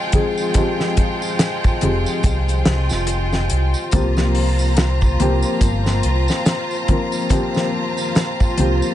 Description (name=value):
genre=trip hop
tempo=71 BPM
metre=4/4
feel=swing 59% on 16ths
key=F minor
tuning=A4 = 440 Hz
part: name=felt-muted upright piano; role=accompaniment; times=0.0-8.9 s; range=F3 to Bb4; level=-22 LUFS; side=left 2 dB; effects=tremolo, tape echo
part: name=clear chamber violin section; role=sustained chords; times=0.0-8.9 s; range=Ab3 to Bb5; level=-25 LUFS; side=left 1 dB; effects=none
part: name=backwards swelling texture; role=texture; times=0.0-8.9 s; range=F4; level=-29 LUFS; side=right 2 dB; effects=built-in reverb
part: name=warm soul drum kit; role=drums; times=0.1-8.8 s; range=hi-hat, kick drum, snare drum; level=-19 LUFS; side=equal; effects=none
part: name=tambourine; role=percussion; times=0.4-8.9 s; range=none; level=-34 LUFS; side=right 4 dB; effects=none
part: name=fingered electric bass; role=bass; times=1.8-8.8 s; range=F1 to C2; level=-18 LUFS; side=equal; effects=none
room=studio ambience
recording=nothing above 10.4 kHz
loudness=-16 LUFS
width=side -12 dB against mid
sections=0.0-8.9 A section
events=none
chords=0.0 Fmadd9; 3.9 C7sus4